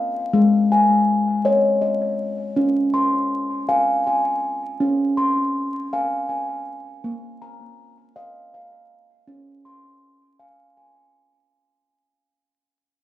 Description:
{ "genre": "world meditative", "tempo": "54 BPM (dotted quarters)", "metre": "6/8", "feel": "straight", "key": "Db major", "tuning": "A4 = 440 Hz", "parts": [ { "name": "steel tongue drum", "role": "arpeggios", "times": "0.0-11.9 s", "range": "Ab3 to C6", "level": "-18 LUFS", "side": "left 1 dB", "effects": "analog delay" } ], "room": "wet studio reverb, RT60 0.7 s", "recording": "vinyl crackle", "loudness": "-18 LUFS", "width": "side -14 dB against mid", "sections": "0.0-11.5 A section", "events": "fade-out 0.0-11.5", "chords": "0.3 Ab5; 2.6 Db; 7.0 Bb5; 9.3 Db", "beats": "| 0.33 1.45 | 2.56 3.68 | 4.80 5.92 | 7.03 8.15 | 9.27 10.39" }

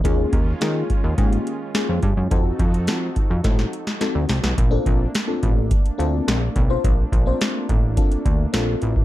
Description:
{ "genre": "early-eighties boogie funk", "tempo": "106 BPM", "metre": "4/4", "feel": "straight", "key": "Bb major from 4.6 s", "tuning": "A4 = 441 Hz", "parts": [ { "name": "FM electric piano with soft pad layer", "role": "accompaniment", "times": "0.0-8.9 s", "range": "Bb3 to C5", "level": "-26 LUFS", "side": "left 4 dB", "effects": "chorus, phaser" }, { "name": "brassy analog pad", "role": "sustained chords", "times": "0.0-9.0 s", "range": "Eb3 to A4", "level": "-31 LUFS", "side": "right 2 dB", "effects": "chorus" }, { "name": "plucky analog bass", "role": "bass", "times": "0.0-9.0 s", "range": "A1 to F3", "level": "-22 LUFS", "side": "equal", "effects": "none" }, { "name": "booming analog drum machine", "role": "drums", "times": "0.0-9.0 s", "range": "hi-hat, kick drum, snare drum", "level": "-20 LUFS", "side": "equal", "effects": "none" } ], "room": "little or no reverb", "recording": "dark, warm production", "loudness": "-18 LUFS", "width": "side -15 dB against mid", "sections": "0.0-4.6 A section; 4.6-9.0 B section", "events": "drum fill 3.4-4.6", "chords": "0.0 Eb9sus4; 2.3 F7b9; 4.6 Bbmaj9", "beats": "| 0.05 0.61 1.18 1.75 | 2.31 2.88 3.44 4.01 | 4.58 5.14 5.71 6.27 | 6.84 7.41 7.97 8.54" }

